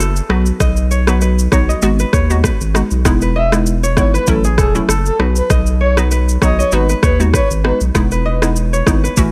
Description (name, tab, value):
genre	afrobeats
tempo	98 BPM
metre	4/4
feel	swing 55% on 16ths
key	E major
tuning	A4 = 443 Hz
part	kora	riff	0.0-9.3 s	G#4 to D#5	-25 LUFS	equal	tape echo
part	saturated sub bass	bass	0.0-9.3 s	E1 to D#2	-18 LUFS	equal	none
part	afro-pop drum kit	drums	0.0-9.3 s	kick drum, rim click, shaker	-19 LUFS	equal	none
part	hollow square pluck	accompaniment	0.3-9.3 s	F#3 to F#4	-21 LUFS	equal	chorus
part	breathy flute-like synth lead	melody	3.4-7.8 s	G#4 to E5	-23 LUFS	equal	chorus, tape echo
room	little or no reverb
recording	none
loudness	-14 LUFS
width	mono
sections	0.0-9.3 A section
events	none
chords	0.3 B; 1.8 G#m7; 3.1 Emaj7; 4.3 A6; 5.2 B; 6.7 G#m7; 8.0 Emaj7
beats	| 0.60 1.22 1.83 2.44 | 3.05 3.66 4.28 4.89 | 5.50 6.11 6.72 7.34 | 7.95 8.56 9.17